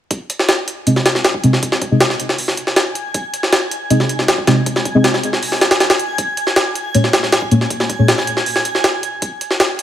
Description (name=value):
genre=drum and bass, jungle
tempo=158 BPM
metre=4/4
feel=straight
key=unclear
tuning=A4 = 440 Hz
part: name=jungle sampler-style drum kit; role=drums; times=0.1-9.8 s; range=hi-hat, kick drum, snare drum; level=-15 LUFS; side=equal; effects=overdrive, high-pass filter on kick, studio reverb, high-pass filter on hats, high-pass filter on snare
part: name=backwards swelling texture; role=texture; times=1.0-9.8 s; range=Ab5 to Ab6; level=-24 LUFS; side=right 2 dB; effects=built-in reverb
part: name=deep mellow chord stab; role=stabs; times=0.9-8.1 s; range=Bb3 to Eb5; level=-16 LUFS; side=equal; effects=chorus, phaser, vintage 12-bit sampler grit, dub echo
room=moderate lush hall reverb, RT60 1.8 s, digital ambience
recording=vinyl crackle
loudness=-13 LUFS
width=side -10 dB against mid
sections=0.1-9.8 A section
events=none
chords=0.1 Ab; 6.2 Bbm7